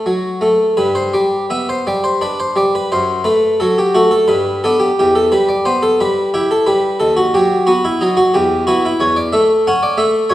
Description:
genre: classical, baroque-style suite movement for harpsichord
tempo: 88 BPM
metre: 3/4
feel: uneven beats, rubato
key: G major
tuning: A4 = 440 Hz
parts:
  - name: harpsichord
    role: solo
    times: 0.0-10.3 s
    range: D#2 to F#5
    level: -12 LUFS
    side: equal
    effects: none
room: wet recital hall reverb, RT60 1.3 s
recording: dark, warm production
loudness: -12 LUFS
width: side -14 dB against mid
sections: 0.8-10.3 A section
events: none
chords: 0.0 D (rootless); 0.8 G; 2.9 F#dim; 4.3 G; 5.0 Em; 7.0 B/D#; 8.3 Em; 9.0 A/E

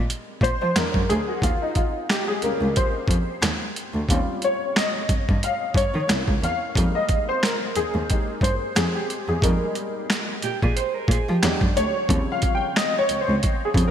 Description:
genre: R&B, neo-soul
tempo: 90 BPM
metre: 4/4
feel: swing 56% on 16ths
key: unclear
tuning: A4 = 440 Hz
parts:
  - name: warm upright piano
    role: accompaniment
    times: 0.0-13.9 s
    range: Db3 to G5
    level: -24 LUFS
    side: left 1 dB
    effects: analog chorus
  - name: warm cello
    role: bass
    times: 0.0-13.8 s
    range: C2 to F3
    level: -25 LUFS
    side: equal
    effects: none
  - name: boom bap sampler-style drum kit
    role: drums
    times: 0.1-13.9 s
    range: finger snaps, hi-hat, kick drum, snare drum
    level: -23 LUFS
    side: equal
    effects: overdrive, gated reverb
  - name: electric guitar through a small old amp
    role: second line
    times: 10.4-11.6 s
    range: G4 to C5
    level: -28 LUFS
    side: right 6 dB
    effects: lush chorus, ping-pong delay
room: moderate lush hall reverb, RT60 3.1 s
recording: bright 1980s-style digital production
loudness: -20 LUFS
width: side -9 dB against mid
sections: 0.0-13.9 A section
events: upright piano solo 0.0-13.9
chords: 0.0 Fm11 (rootless); 0.8 E9 (rootless); 1.4 Eb13; 6.1 C7b9; 6.8 Fm11; 11.4 E9 (rootless); 12.1 Eb13

